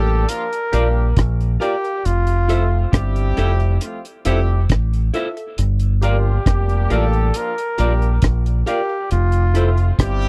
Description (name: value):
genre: roots reggae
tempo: 68 BPM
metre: 4/4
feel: straight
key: G dorian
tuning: A4 = 439 Hz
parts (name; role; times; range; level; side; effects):
- warm flugelhorn; melody; 0.0-10.0 s; F4 to Bb4; -26 LUFS; equal; tape echo
- warm horn section; second line; 0.0-10.3 s; F3 to G4; -30 LUFS; equal; tape echo
- filtered dub chord stab; stabs; 0.0-9.8 s; F4 to F5; -29 LUFS; equal; phaser
- deep dub fingered electric bass; bass; 0.0-10.3 s; F1 to Bb1; -19 LUFS; equal; none
- deep reggae drum kit; drums; 0.3-10.3 s; hi-hat, kick drum, rim click; -21 LUFS; equal; none
- clean electric guitar; accompaniment; 0.7-9.7 s; E4 to D5; -29 LUFS; equal; tape echo
room: little or no reverb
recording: dry, close 1970s-style studio recording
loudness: -18 LUFS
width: mono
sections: 0.0-10.3 A section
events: none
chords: 0.0 Gm7; 2.0 Fmaj7; 5.6 Gm7; 9.1 Fmaj7